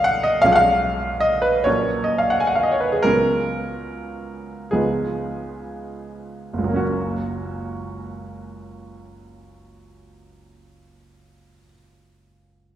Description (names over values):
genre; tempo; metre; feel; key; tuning
classical, romantic nocturne for solo piano; 27-53 BPM (dotted quarters); 12/8; rubato; F# major; A4 = 440 Hz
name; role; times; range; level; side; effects
clear baby grand piano; solo; 0.0-12.8 s; F#1 to G#5; -19 LUFS; equal; none
room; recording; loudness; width
wet recital hall reverb, RT60 1.8 s; heard from further back in the room; -18 LUFS; side -11 dB against mid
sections
0.0-6.8 A section; 6.8-12.8 B section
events
slowing down 0.0-6.8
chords
0.4 C#7/B; 1.7 F#/A#; 3.1 C#7sus4; 4.7 C#9; 6.8 F#